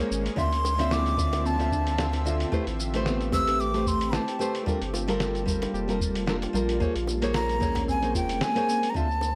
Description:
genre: sunset chillout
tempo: 112 BPM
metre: 4/4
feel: swing 56% on 16ths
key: unclear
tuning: A4 = 440 Hz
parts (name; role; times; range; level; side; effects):
- nylon-string guitar; accompaniment; 0.0-9.1 s; D3 to E5; -32 LUFS; equal; analog delay
- shimmering ambient pad; sustained chords; 0.0-8.9 s; D3 to A5; -35 LUFS; equal; chorus, built-in reverb, vintage 12-bit sampler grit
- round analog bass; bass; 0.0-9.3 s; F1 to D2; -32 LUFS; equal; none
- dusty soul sampler-style drum kit; drums; 0.0-9.3 s; hi-hat, shaker, snare drum; -37 LUFS; equal; none
- breathy jazz flute; melody; 0.4-9.3 s; G5 to E6; -31 LUFS; equal; analog delay
- electronic kick drum; drums; 0.4-9.1 s; none; -32 LUFS; equal; overdrive
- bongos; percussion; 0.6-9.3 s; none; -41 LUFS; equal; none
- soft round pluck; arpeggios; 0.9-8.8 s; B3 to G4; -40 LUFS; equal; chorus, analog delay
- wind-like tuned noise texture; texture; 9.1-9.3 s; C5; -49 LUFS; equal; built-in reverb
room: light reverb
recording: dry, gritty hardware recording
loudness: -26 LUFS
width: mono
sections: 0.0-9.0 A section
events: band accent 8.4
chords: 0.4 Dm9; 2.5 Am9; 4.7 Gm9; 6.8 Bbm9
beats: | 0.38 0.92 1.45 1.99 | 2.52 3.06 3.59 4.13 | 4.67 5.20 5.74 6.27 | 6.81 7.34 7.88 8.41 | 8.95

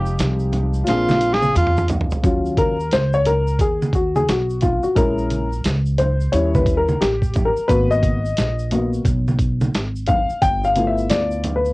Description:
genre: hip hop, jazz-hop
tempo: 88 BPM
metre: 4/4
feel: swing 62% on 16ths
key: unclear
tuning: A4 = 440 Hz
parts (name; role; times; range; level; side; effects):
- breathy tenor saxophone; melody; 0.0-1.9 s; F4 to Ab4; -19 LUFS; right 1 dB; none
- dark upright piano; accompaniment; 0.0-11.7 s; F3 to G5; -20 LUFS; left 2 dB; none
- upright bass; bass; 0.0-11.7 s; F1 to Fb2; -22 LUFS; equal; none
- tube shaker and congas; percussion; 0.1-11.7 s; none; -26 LUFS; right 2 dB; none
- dusty soul sampler-style drum kit; drums; 0.2-11.6 s; hi-hat, kick drum, snare drum, toms; -21 LUFS; right 1 dB; cassette tape
room: little or no reverb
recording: home recording on cassette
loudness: -16 LUFS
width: side -21 dB against mid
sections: 0.0-2.2 A section; 2.2-11.7 A section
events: tenor saxophone solo 0.0-2.2; drum fill 0.9-2.2; upright piano solo 2.2-11.7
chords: 0.0 Fm7; 0.9 Bb7; 2.2 Ebm7; 5.0 Bbm7b5; 6.3 Eb7b9; 7.7 Abm9; 10.4 G13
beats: 0.19 0.87 1.56 | 2.24 2.92 3.60 4.28 | 4.96 5.65 6.33 7.01 | 7.69 8.37 9.06 9.74 | 10.42 11.10

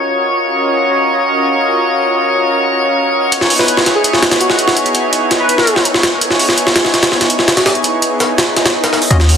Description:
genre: drum and bass, jungle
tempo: 166 BPM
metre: 4/4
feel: straight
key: unclear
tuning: A4 = 440 Hz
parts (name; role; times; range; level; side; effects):
- lush unison pad; sustained chords; 0.0-9.4 s; Cb4 to Eb5; -16 LUFS; equal; chorus
- drifting glass-harmonics texture; texture; 0.0-9.1 s; Db5 to Db6; -18 LUFS; left 1 dB; chorus, built-in reverb
- jungle sampler-style drum kit; drums; 3.3-9.4 s; hi-hat, kick drum, snare drum; -12 LUFS; equal; overdrive, high-pass filter on snare, studio reverb, high-pass filter on kick, high-pass filter on hats
- airy dreamy lead; melody; 3.6-5.8 s; Gb4 to Cb5; -19 LUFS; equal; chorus, cassette tape, dub echo
- swell and riser; sound effects; 8.5-9.4 s; none; -21 LUFS; left 2 dB; none
- barky tine electric piano; stabs; 9.1-9.2 s; Db4 to Eb5; -23 LUFS; left 3 dB; low-pass filter, dub echo
- warm 808-style bass; bass; 9.1-9.4 s; Eb2; -9 LUFS; equal; none
room: moderate lush hall reverb, RT60 1.6 s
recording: dense, heavily limited modern master, vinyl crackle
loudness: -10 LUFS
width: side -7 dB against mid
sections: 0.0-9.1 A section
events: swell 8.5-9.1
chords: 0.0 Ebm9; 3.3 Dbm9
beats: 0.07 | 0.43 0.79 1.15 1.51 | 1.88 2.24 2.60 2.96 | 3.32 3.68 4.04 4.41 | 4.77 5.13 5.49 5.85 | 6.21 6.58 6.94 7.30 | 7.66 8.02 8.38 8.74 | 9.11

